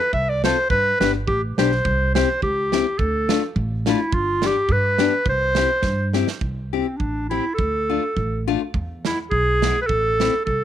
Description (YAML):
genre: alpine folk, alpine dance band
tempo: 104 BPM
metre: 2/4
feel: swing 53% on 8ths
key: C major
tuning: A4 = 440 Hz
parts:
  - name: clear clarinet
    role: melody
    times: 0.0-10.6 s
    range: C4 to E5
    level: -21 LUFS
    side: right 1 dB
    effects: none
  - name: upright bass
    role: bass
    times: 0.1-10.6 s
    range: G1 to G2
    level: -24 LUFS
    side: right 1 dB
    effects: none
  - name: modern studio drum kit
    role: drums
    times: 0.1-10.6 s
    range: kick drum, snare drum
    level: -26 LUFS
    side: right 4 dB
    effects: none
  - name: picked steel-string acoustic guitar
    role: accompaniment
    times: 0.4-10.3 s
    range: G#3 to A4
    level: -23 LUFS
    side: left 14 dB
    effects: none
room: light reverb, studio reverb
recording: 1960s-style stereo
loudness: -18 LUFS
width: side -10 dB against mid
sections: 0.0-6.4 A section; 6.4-10.6 B section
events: drum fill 5.8-6.4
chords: 0.0 F; 0.7 G; 1.9 C; 3.0 Dm; 4.1 G; 5.3 C; 7.6 Dm; 8.8 E; 9.9 Am